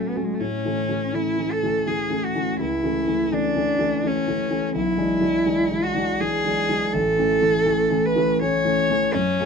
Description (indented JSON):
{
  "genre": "classical, romantic duo for cello and grand piano",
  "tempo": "82 BPM",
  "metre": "3/4",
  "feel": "rubato",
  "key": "A major from 4.7 s",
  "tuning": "A4 = 437 Hz",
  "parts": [
    { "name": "rich cello", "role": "melody", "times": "0.0-9.5 s", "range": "G#3 to C#5", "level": "-22 LUFS", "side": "right 1 dB", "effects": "none" },
    { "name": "warm concert grand piano", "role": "accompaniment", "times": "0.0-9.5 s", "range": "A1 to D4", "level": "-23 LUFS", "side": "left 2 dB", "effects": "none" }
  ],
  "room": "light reverb",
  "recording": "dark, warm production",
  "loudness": "-20 LUFS",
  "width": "side -6 dB against mid",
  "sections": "0.0-9.5 A section",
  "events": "none",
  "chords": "0.4 A; 2.6 A/C#; 4.7 E7/B; 6.9 A"
}